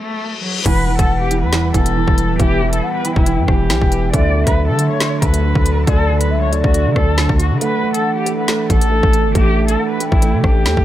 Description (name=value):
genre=hip hop, drill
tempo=138 BPM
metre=4/4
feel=half-time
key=unclear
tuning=A4 = 440 Hz
part: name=warm cello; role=melody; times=0.0-10.8 s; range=F#3 to D5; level=-22 LUFS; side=left 2 dB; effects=low-pass filter, tape echo
part: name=reverse cymbal and impact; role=sound effects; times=0.0-2.4 s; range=none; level=-26 LUFS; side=left 2 dB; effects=none
part: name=gliding portamento lead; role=second line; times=0.7-10.8 s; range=D5 to G5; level=-25 LUFS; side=left 3 dB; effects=chorus, tape echo
part: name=dark concert grand piano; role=accompaniment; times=0.7-10.8 s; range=D3 to A3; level=-21 LUFS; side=right 5 dB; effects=low-pass filter
part: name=airy breathy pad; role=sustained chords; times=0.7-10.8 s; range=E3 to B4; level=-24 LUFS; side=right 1 dB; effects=chorus
part: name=distorted 808-style bass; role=bass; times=0.7-10.8 s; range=D1 to D3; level=-17 LUFS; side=equal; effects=distortion
part: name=drill drum kit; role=drums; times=0.7-10.8 s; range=crash cymbal, hi-hat, kick drum, rim click, snare drum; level=-16 LUFS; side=equal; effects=none
room=little or no reverb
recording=none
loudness=-13 LUFS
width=side -13 dB against mid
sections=0.7-10.8 A section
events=break 0.0-0.7, 7.6-8.5; reverse cymbal 0.0-0.7; stop 0.0-0.7; impact 0.7-2.4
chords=0.0 N.C.; 0.7 Em; 4.1 D; 7.6 Asus4